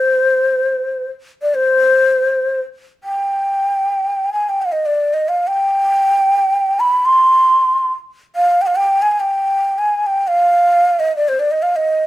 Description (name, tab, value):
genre	Arabic maqam ensemble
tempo	free time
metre	none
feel	none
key	C maqam nahawand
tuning	A4 = 441 Hz
part	breathy mellow ney	solo	0.0-12.1 s	C5 to C6	-13 LUFS	equal	none
room	light reverb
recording	none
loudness	-13 LUFS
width	side -15 dB against mid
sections	0.0-2.7 A section; 2.7-12.1 A section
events	none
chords	none